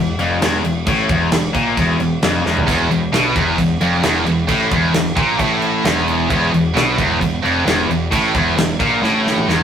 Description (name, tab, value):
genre	heavy metal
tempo	132 BPM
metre	4/4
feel	straight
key	unclear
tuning	A4 = 440 Hz
part	distorted electric guitar	riff	0.0-9.6 s	E2 to B2	-20 LUFS	right 1 dB	distortion
part	tight distorted guitar	riff	0.0-9.6 s	E2 to B2	-20 LUFS	left 5 dB	distortion
part	growling picked electric bass	bass	0.0-9.6 s	E1 to B1	-24 LUFS	equal	overdrive
part	modern studio drum kit	drums	0.2-9.6 s	crash cymbal, kick drum, snare drum, splash cymbal, toms	-20 LUFS	right 1 dB	none
part	heavy high-gain guitar	riff	2.7-9.6 s	E2 to B2	-19 LUFS	right 5 dB	distortion
room	light reverb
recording	rough rehearsal-room recording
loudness	-14 LUFS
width	side -8 dB against mid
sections	0.0-9.6 A section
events	drum fill 2.4, 9.0-9.6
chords	0.0 E5